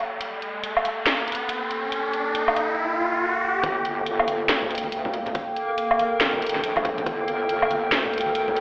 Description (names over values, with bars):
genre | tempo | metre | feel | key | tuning
deep dubstep | 140 BPM | 4/4 | swing 61% on 16ths, half-time | G minor | A4 = 440 Hz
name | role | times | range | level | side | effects
dark analog pad | sustained chords | 0.0-8.6 s | Bb3 to G5 | -27 LUFS | equal | lush chorus
riser | sound effects | 0.0-3.6 s | none | -25 LUFS | equal | none
garage drum kit | drums | 0.2-8.6 s | hi-hat, snare drum, woodblock | -24 LUFS | equal | overdrive
wobble bass | bass | 3.6-8.6 s | G1 to D2 | -30 LUFS | equal | chorus
electronic kick drum | drums | 3.6-7.2 s | none | -30 LUFS | equal | none
congas | percussion | 3.6-8.5 s | none | -35 LUFS | equal | dub echo
backwards swelling texture | texture | 4.8-8.6 s | Bb3 | -30 LUFS | equal | built-in reverb
room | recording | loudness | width
wet lush hall reverb, RT60 2.0 s | played on a big sound system in a bare room, large studio reverb, telephone sound | -21 LUFS | side -24 dB against mid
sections
0.0-3.6 A section; 3.6-8.6 B section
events
build-up 0.0-3.6; riser 0.0-3.6; filter sweep on analog synth pad 0.0-3.6; drop 3.6-8.6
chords
0.0 Gmadd9